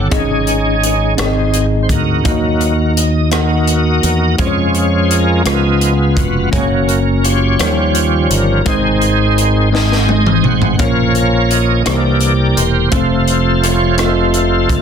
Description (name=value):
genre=slow gospel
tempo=56 BPM (dotted quarters)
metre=6/8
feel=straight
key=unclear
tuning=A4 = 440 Hz
part: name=bell-like tine electric piano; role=accompaniment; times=0.0-14.8 s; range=Ab2 to Gb5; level=-17 LUFS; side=left 1 dB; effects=fast stereo tremolo
part: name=bright tonewheel organ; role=sustained chords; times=0.0-14.8 s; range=C3 to Gb5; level=-16 LUFS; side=right 2 dB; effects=slow rotary speaker, overdrive, chorus vibrato
part: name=fingered electric bass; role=bass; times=0.0-14.8 s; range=E1 to F2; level=-16 LUFS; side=equal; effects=none
part: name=crisp fusion drum kit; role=drums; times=0.1-14.8 s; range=hi-hat, kick drum, rim click, snare drum, toms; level=-18 LUFS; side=left 1 dB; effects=soft clipping on snare
room=light reverb, small room ambience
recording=dense, heavily limited modern master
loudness=-11 LUFS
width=side -7 dB against mid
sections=0.0-14.8 A section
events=tonewheel organ solo 0.0-14.8; drum fill 9.7-10.8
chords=0.1 Absus4; 1.2 Ab; 2.3 Ebm; 4.4 Db/F; 5.5 Db7; 6.5 Gb; 7.6 Eb9; 8.7 Ab; 10.8 Bbm; 11.9 C7; 12.9 F